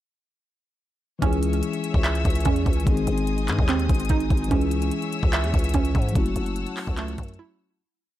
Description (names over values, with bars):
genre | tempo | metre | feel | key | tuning
hip hop, trap | 146 BPM | 4/4 | half-time | C# harmonic minor | A4 = 440 Hz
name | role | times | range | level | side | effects
mellow tine electric piano | accompaniment | 1.2-7.8 s | D#3 to G#4 | -28 LUFS | left 5 dB | none
bright symphonic string section | sustained chords | 1.2-7.8 s | B#4 to E6 | -34 LUFS | left 4 dB | none
hollow square pluck | arpeggios | 1.2-7.8 s | A3 to E5 | -29 LUFS | right 8 dB | chorus, digital delay
growling 808-style bass | bass | 1.2-7.4 s | F#1 to G#2 | -26 LUFS | equal | none
trap drum kit | drums | 1.2-7.4 s | handclaps, hi-hat, kick drum | -24 LUFS | equal | none
room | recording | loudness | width
digital ambience | dark, warm production | -21 LUFS | side -14 dB against mid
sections
1.2-7.8 hook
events
fade-out 6.2-7.8; break 7.4-7.8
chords
1.2 C#m; 2.9 G#; 4.5 C#m; 6.2 F#m7